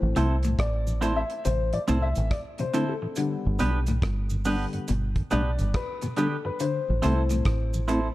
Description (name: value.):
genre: roots reggae.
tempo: 70 BPM.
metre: 4/4.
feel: swing 65% on 16ths.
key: A minor.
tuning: A4 = 440 Hz.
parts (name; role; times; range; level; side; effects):
mellow tonewheel organ; accompaniment; 0.0-8.0 s; G2 to E4; -31 LUFS; equal; chorus vibrato, stopped rotary speaker.
dark upright piano; stabs; 0.0-8.1 s; D3 to E5; -32 LUFS; left 5 dB; none.
deep dub fingered electric bass; bass; 0.0-8.1 s; G1 to C2; -26 LUFS; equal; none.
semi-hollow electric guitar; accompaniment; 0.2-8.1 s; B3 to C5; -32 LUFS; right 2 dB; warbly pitch drift.
semi-hollow electric guitar; arpeggios; 0.2-7.4 s; A2 to D3; -31 LUFS; left 3 dB; none.
damped 70s drum kit; drums; 0.2-8.1 s; hi-hat, kick drum, rim click; -30 LUFS; equal; none.
cabasa; percussion; 0.2-8.1 s; none; -43 LUFS; right 5 dB; none.
room: light reverb.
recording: dark, warm production.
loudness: -24 LUFS.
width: side -16 dB against mid.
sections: 0.0-8.1 A section.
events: upright piano solo 0.0-8.1.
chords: 0.0 Am; 3.2 G; 6.6 Am.